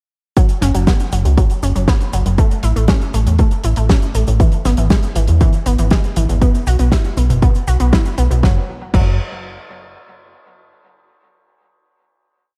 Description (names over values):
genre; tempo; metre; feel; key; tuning
italo disco; 119 BPM; 4/4; straight; F# minor; A4 = 439 Hz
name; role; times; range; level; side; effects
unison pluck; arpeggios; 0.4-9.2 s; E2 to F#4; -24 LUFS; equal; delay
damped 70s drum kit; drums; 0.4-9.0 s; cabasa, crash cymbal, hi-hat, snare drum; -24 LUFS; equal; small room ambience
electronic kick drum; drums; 0.4-9.0 s; none; -16 LUFS; equal; small room ambience
fingered electric bass; bass; 0.6-9.2 s; F#1 to E2; -17 LUFS; equal; none
room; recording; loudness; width
light reverb, studio reverb; dark, warm production; -15 LUFS; mono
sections
0.4-8.4 verse; 8.4-10.4 final chord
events
none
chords
0.4 F#5; 2.4 A5; 4.4 E/G#; 6.4 B5; 8.4 N.C.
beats
| 0.37 0.87 1.38 1.88 | 2.38 2.89 3.39 3.90 | 4.40 4.90 5.41 5.91 | 6.42 6.92 7.42 7.93 | 8.43 8.94